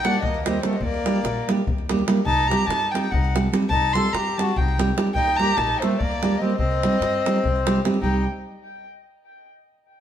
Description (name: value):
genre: balkan folk, Balkan wedding band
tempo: 291 BPM (eighths)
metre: 7/8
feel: straight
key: C dorian sharp4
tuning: A4 = 441 Hz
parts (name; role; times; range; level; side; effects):
- dark violin; melody; 0.0-8.2 s; C5 to C6; -25 LUFS; equal; tape echo
- accordion; second line; 0.0-8.2 s; A3 to A4; -27 LUFS; left 4 dB; none
- nylon-string guitar; accompaniment; 0.0-8.3 s; G3 to G4; -24 LUFS; right 3 dB; none
- davul; percussion; 0.0-8.3 s; none; -28 LUFS; left 1 dB; none
- upright bass; bass; 0.2-8.2 s; Bb1 to G2; -29 LUFS; left 1 dB; none
room: wet stone room reverb, RT60 1.2 s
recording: band playing live in one room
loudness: -19 LUFS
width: side -10 dB against mid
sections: 0.0-8.0 A section; 8.0-9.5 B section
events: none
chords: 0.0 Eb; 2.3 Cm; 5.1 Eb; 6.6 Cm